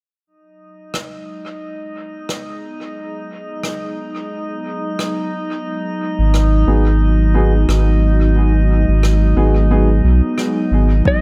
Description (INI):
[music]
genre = ambient dub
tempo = 89 BPM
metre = 4/4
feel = swing 57% on 16ths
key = G# minor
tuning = A4 = 440 Hz
[part]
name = warbly tape-like pad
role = sustained chords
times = 1.1-11.2 s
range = F#3 to G#4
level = -25 LUFS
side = equal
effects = chorus, built-in reverb
[part]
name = drifting glass-harmonics texture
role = texture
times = 0.7-11.2 s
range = D#4 to D#5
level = -27 LUFS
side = equal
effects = chorus, built-in reverb
[part]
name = rim click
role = drums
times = 0.9-10.5 s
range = none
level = -31 LUFS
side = equal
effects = dub echo
[part]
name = warm sub bass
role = bass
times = 6.2-11.0 s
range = G#1 to B1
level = -15 LUFS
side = equal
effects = none
[part]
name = warm upright piano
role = stabs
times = 6.7-9.9 s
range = B3 to G#4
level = -26 LUFS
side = equal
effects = low-pass filter, dub echo
[part]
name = clean lap steel guitar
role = melody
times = 11.1-11.2 s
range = D#5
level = -18 LUFS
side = equal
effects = none
[part]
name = electronic kick drum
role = drums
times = 11.1-11.2 s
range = none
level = -17 LUFS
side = equal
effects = overdrive
[sound]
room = light reverb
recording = none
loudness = -16 LUFS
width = mono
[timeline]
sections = 0.3-11.1 A section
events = none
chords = 0.3 G#m7